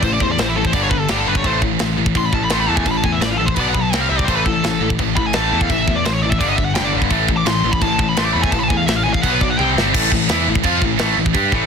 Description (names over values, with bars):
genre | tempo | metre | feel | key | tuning
heavy metal | 170 BPM | 4/4 | straight | A minor | A4 = 440 Hz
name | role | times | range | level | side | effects
high-gain lead guitar | melody | 0.0-9.7 s | E4 to D6 | -21 LUFS | left 2 dB | distortion, ping-pong delay
heavy high-gain guitar | riff | 0.0-11.7 s | G2 to G4 | -22 LUFS | right 16 dB | distortion
high-gain distorted guitar | riff | 0.0-11.7 s | G2 to G4 | -21 LUFS | left 14 dB | distortion
modern bright picked electric bass | bass | 0.0-11.7 s | G1 to G2 | -23 LUFS | right 1 dB | none
tight metal drum kit | drums | 0.0-11.6 s | crash cymbal, kick drum, snare drum, toms | -20 LUFS | right 1 dB | none
room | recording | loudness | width
studio ambience | dense, heavily limited modern master | -14 LUFS | side -6 dB against mid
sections
0.0-9.9 A section; 9.9-11.7 B section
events
lead electric guitar solo 0.0-9.9; drum fill 9.6-9.9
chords
0.0 A5; 0.7 G5; 1.5 A5; 3.6 B5; 3.9 C5; 4.3 A5; 6.4 G5; 7.1 A5; 9.2 B5; 9.6 C5; 9.9 Am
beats
| 0.04 0.39 0.75 1.10 | 1.46 1.81 2.16 2.52 | 2.87 3.23 3.58 3.93 | 4.29 4.64 5.00 5.35 | 5.70 6.06 6.41 6.76 | 7.12 7.47 7.82 8.18 | 8.53 8.88 9.24 9.59 | 9.95 10.30 10.65 11.01 | 11.36